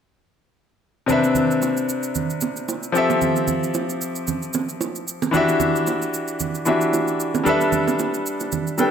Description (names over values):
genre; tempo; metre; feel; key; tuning
amapiano; 113 BPM; 4/4; swing 55% on 16ths; unclear; A4 = 439 Hz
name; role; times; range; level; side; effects
bright concert grand piano; accompaniment; 1.1-8.9 s; C3 to G5; -20 LUFS; left 2 dB; none
shaker; drums; 1.1-8.9 s; none; -32 LUFS; right 4 dB; none
congas and bongos; percussion; 1.1-8.9 s; none; -25 LUFS; right 7 dB; none
room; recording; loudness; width
moderate lush hall reverb, RT60 2.0 s, small room ambience; none; -19 LUFS; side -8 dB against mid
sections
1.1-8.9 A section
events
none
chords
1.1 Cmaj7; 3.0 Fmaj7; 5.3 Em9; 7.5 G6